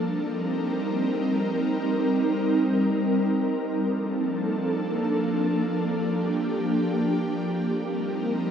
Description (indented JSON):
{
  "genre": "hip hop",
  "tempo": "free time",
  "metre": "none",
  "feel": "none",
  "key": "C dorian",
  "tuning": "A4 = 443 Hz",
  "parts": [
    { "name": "ethereal airy pad", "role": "solo", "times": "0.0-8.5 s", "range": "F3 to Bb4", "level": "-23 LUFS", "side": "equal", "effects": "ensemble chorus, built-in reverb" }
  ],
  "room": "light reverb",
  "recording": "rough home demo mix",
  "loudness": "-23 LUFS",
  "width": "side -8 dB against mid",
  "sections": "0.0-8.5 A section",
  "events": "none",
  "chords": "0.0 Cm7; 3.8 Bbmaj7; 7.7 Cm7",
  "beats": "free time"
}